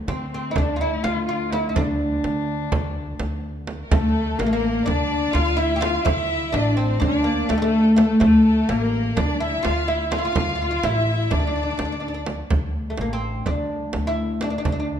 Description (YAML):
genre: Turkish makam ensemble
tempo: 251 BPM (eighths)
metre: 9/8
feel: straight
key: D makam nihavent from 3.9 s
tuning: A4 = 440 Hz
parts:
  - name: dark studio cello section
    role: drone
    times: 0.0-4.0, 12.5-15.0 s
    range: D2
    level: -31 LUFS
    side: left 3 dB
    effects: none
  - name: oud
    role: melody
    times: 0.1-14.9 s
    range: G3 to G4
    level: -22 LUFS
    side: equal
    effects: none
  - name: warm kamancheh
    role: second line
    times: 0.1-12.3 s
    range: A3 to F4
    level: -28 LUFS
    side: left 6 dB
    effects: none
  - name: upright bass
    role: bass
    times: 0.1-15.0 s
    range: A1 to D3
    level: -27 LUFS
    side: equal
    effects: none
  - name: frame drum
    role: percussion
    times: 0.1-14.8 s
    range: none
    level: -27 LUFS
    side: right 3 dB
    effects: none
  - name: warm symphonic violin section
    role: second line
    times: 3.8-12.3 s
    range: A4 to F5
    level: -29 LUFS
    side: right 1 dB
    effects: none
room: wet recital hall reverb, RT60 1.4 s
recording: dark, warm production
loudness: -19 LUFS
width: side -9 dB against mid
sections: 0.0-3.9 A section; 3.9-12.5 B section; 12.5-15.0 C section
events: none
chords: none